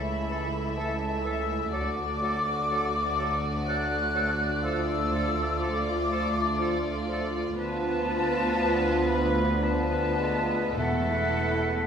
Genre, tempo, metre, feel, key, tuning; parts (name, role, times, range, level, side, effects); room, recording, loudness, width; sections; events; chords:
classical, slow romantic movement for symphony orchestra; 50-64 BPM; 3/4; rubato; A4 = 439 Hz
warm symphonic violin section; melody; 0.0-11.9 s; A4 to E5; -34 LUFS; left 3 dB
dark studio violin section; second line; 0.0-11.9 s; E4 to F#4; -36 LUFS; equal
large flute ensemble; second line; 0.0-11.9 s; F#5 to F#6; -30 LUFS; left 1 dB
dark symphonic viola section; accompaniment; 0.0-11.9 s; A3 to B3; -36 LUFS; right 1 dB
clear trombone section; sustained chords; 0.0-11.9 s; D3 to B3; -38 LUFS; right 2 dB
mellow French horn section; sustained chords; 0.0-11.9 s; B3 to F#4; -34 LUFS; equal
dark chamber double bass section; bass; 0.0-11.9 s; E1 to D2; -34 LUFS; right 1 dB
warm symphonic cello section; bass; 0.0-11.9 s; C#2 to E2; -34 LUFS; right 1 dB
bright oboe; second line; 0.3-11.9 s; A4 to B4; -36 LUFS; right 1 dB
mellow bassoon; accompaniment; 0.3-11.9 s; E3 to A3; -36 LUFS; right 2 dB
timpani; percussion; 10.8-11.9 s; E2; -34 LUFS; left 1 dB
wet recital hall reverb, RT60 1.4 s; recorded in a church or concert hall; -25 LUFS; side -7 dB against mid
0.0-11.9 A section
0.0 A/C#; 1.7 D; 4.6 Dm; 7.6 Bm7b5/D; 10.8 Esus4